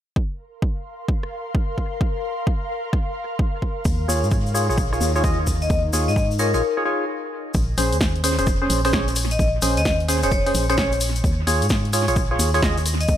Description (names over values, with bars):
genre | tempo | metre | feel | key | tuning
UK garage, two-step garage | 130 BPM | 4/4 | swing 65% on 16ths | Bb minor | A4 = 438 Hz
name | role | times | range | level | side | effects
electronic kick drum | drums | 0.2-13.2 s | none | -22 LUFS | equal | overdrive
ethereal airy pad | texture | 0.6-6.6, 12.4-13.2 s | Eb4 to C6 | -30 LUFS | left 2 dB | ensemble chorus, built-in reverb, sidechain pumping
punchy analog drum machine | drums | 1.2-5.0, 7.8-13.1 s | hi-hat, rim click, snare drum | -26 LUFS | left 1 dB | overdrive, dub echo
organ-like FM bass | bass | 3.9-13.2 s | F1 to Ab2 | -22 LUFS | equal | none
tube shaker | percussion | 3.9-13.2 s | none | -30 LUFS | left 3 dB | dub echo
percussive organ stab | stabs | 4.1-12.8 s | Db4 to Eb5 | -23 LUFS | right 1 dB | wide subtle chorus, dub echo
vibraphone with medium hard mallets | melody | 5.6-13.1 s | Bb4 to Eb5 | -26 LUFS | left 3 dB | dub echo
room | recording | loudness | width
light reverb, digital ambience | echo-heavy mix | -19 LUFS | side -11 dB against mid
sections
0.2-7.5 A section; 7.5-13.2 B section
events
break 6.6-7.5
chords
0.2 Bb5; 3.9 Eb9sus4; 7.3 N.C.; 7.5 Bbm7; 11.2 Eb9sus4